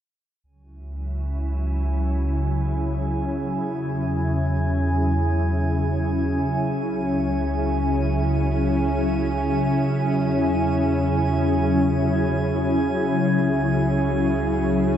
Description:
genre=ambient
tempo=free time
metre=none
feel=none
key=C# minor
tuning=A4 = 440 Hz
part: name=glassy FM pad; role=sustained chords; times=1.0-15.0 s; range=C#3 to G#4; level=-22 LUFS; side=equal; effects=ensemble chorus, built-in reverb
part: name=warm sub bass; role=bass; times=0.4-15.0 s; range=C#2 to E2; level=-26 LUFS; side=equal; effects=none
part: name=bowed-like drone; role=drone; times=1.2-15.0 s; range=C#3 to C#4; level=-30 LUFS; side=left 2 dB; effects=built-in reverb
part: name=drifting glass-harmonics texture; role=texture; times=1.4-15.0 s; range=G#5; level=-32 LUFS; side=right 4 dB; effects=chorus, built-in reverb
room=wet huge ambient reverb, RT60 8.1 s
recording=dark, warm production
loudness=-20 LUFS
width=side -10 dB against mid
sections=0.4-15.0 A section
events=fade-out on sub bass 0.4-15.0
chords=0.4 C#m; 3.6 E; 6.8 C#m; 9.9 E; 13.2 C#m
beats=free time

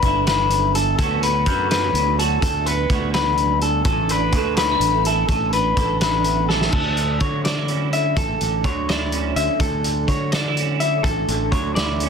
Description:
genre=math rock and midwest emo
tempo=84 BPM (dotted quarters)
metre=6/8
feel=straight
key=D major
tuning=A4 = 438 Hz
part: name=electric guitar through a small old amp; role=accompaniment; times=0.0-12.1 s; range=D2 to A4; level=-25 LUFS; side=right 16 dB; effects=ensemble chorus
part: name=electric guitar through a small old amp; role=arpeggios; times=0.0-12.1 s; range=A4 to E5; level=-21 LUFS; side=left 5 dB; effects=warbly pitch drift
part: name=growling fingered electric bass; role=bass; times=0.0-12.1 s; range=G1 to D3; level=-24 LUFS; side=equal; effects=overdrive
part: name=loose indie drum kit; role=drums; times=0.0-12.1 s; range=crash cymbal, hi-hat, kick drum, snare drum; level=-24 LUFS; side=equal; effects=none
room=light reverb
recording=dense, heavily limited modern master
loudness=-17 LUFS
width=side -6 dB against mid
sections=0.0-6.7 A section; 6.7-12.1 B section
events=drum fill 6.5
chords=0.0 G69; 1.0 D6; 3.9 Asus4; 6.7 Dmaj7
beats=0.26 | 0.98 1.70 | 2.42 3.14 | 3.86 4.57 | 5.29 6.01 | 6.73 7.45 | 8.17 8.89 | 9.61 10.32 | 11.04 11.76

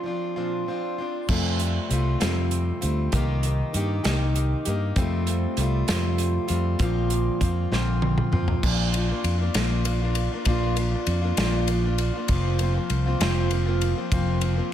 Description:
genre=folk rock and heartland rock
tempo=66 BPM (dotted quarters)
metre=6/8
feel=straight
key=unclear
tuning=A4 = 440 Hz
part: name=picked plugged-in steel-string acoustic guitar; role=accompaniment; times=0.0-14.7 s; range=F2 to G4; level=-27 LUFS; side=left 1 dB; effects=dub echo
part: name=fingered electric bass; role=bass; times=1.3-14.6 s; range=F1 to G2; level=-24 LUFS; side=equal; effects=none
part: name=natural country drum kit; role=drums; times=1.3-14.6 s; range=crash cymbal, hi-hat, kick drum, ride cymbal, snare drum, toms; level=-27 LUFS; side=equal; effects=none
room=light reverb, small room ambience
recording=echo-heavy mix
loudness=-22 LUFS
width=side -10 dB against mid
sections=0.0-1.3 A section; 1.3-8.6 B section; 8.6-14.7 C section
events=drum fill 7.7-8.6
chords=0.0 Bbadd9; 1.3 Fadd9; 3.1 Cm7; 5.0 Fadd9; 6.8 Bbadd9; 8.6 Bb; 12.3 Fsus4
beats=0.37 | 1.30 2.22 | 3.14 4.06 | 4.97 5.89 | 6.81 7.72 | 8.64 9.55 | 10.46 11.38 | 12.29 13.21 | 14.12

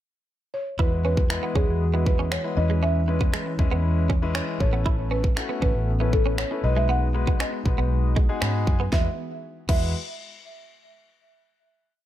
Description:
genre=dance-pop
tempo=118 BPM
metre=4/4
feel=straight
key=E major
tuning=A4 = 439 Hz
part: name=buzzing marimba with soft mallets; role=melody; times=0.5-9.9 s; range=G#4 to F#5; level=-30 LUFS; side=equal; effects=digital delay
part: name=clear concert grand piano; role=accompaniment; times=0.8-9.9 s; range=G#3 to B5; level=-31 LUFS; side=left 6 dB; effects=sidechain pumping
part: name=chorused pulse-width pad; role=sustained chords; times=0.8-9.2 s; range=E3 to B4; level=-34 LUFS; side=equal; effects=sidechain pumping
part: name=direct-recorded clean electric guitar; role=riff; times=0.8-9.8 s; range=G#3 to E4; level=-33 LUFS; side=right 7 dB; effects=ensemble chorus
part: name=vintage muted fingered electric bass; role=bass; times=0.8-9.9 s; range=A1 to G#2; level=-24 LUFS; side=equal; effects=sidechain pumping
part: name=pop drum kit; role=drums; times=0.8-9.8 s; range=crash cymbal, finger snaps, kick drum, snare drum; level=-24 LUFS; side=equal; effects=none
room=digital ambience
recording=none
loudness=-21 LUFS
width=side -13 dB against mid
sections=0.0-0.8 pickup bar; 0.8-8.9 verse; 8.9-11.0 final chord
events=grand piano fill 8.2-8.9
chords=0.0 N.C.; 0.8 Eadd9; 2.6 C#m7/E; 4.6 Aadd9; 6.6 B6; 8.9 Eadd9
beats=0.28 | 0.79 1.30 1.81 2.32 | 2.82 3.33 3.84 4.35 | 4.86 5.37 5.88 6.38 | 6.89 7.40 7.91 8.42 | 8.93 9.43

